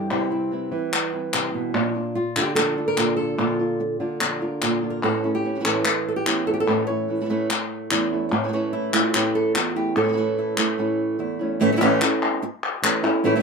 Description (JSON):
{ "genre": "flamenco", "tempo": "146 BPM", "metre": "4/4", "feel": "straight", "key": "A phrygian dominant", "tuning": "A4 = 440 Hz", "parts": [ { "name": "flamenco guitar", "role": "melody", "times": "0.0-13.4 s", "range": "E2 to C#5", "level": "-22 LUFS", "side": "right 2 dB", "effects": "none" }, { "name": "flamenco guitar", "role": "stabs", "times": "0.0-11.6 s", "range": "A2 to F4", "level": "-27 LUFS", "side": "right 2 dB", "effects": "none" }, { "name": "palmas hand claps", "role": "percussion", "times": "0.1-13.2 s", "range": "none", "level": "-24 LUFS", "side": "left 4 dB", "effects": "none" } ], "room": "light reverb", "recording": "minimal, uncompressed stereo recording", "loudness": "-20 LUFS", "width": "side -4 dB against mid", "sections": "0.0-11.6 A section; 11.6-13.4 B section", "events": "break 10.8-11.6", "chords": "0.0 C; 1.7 Bb; 5.0 A" }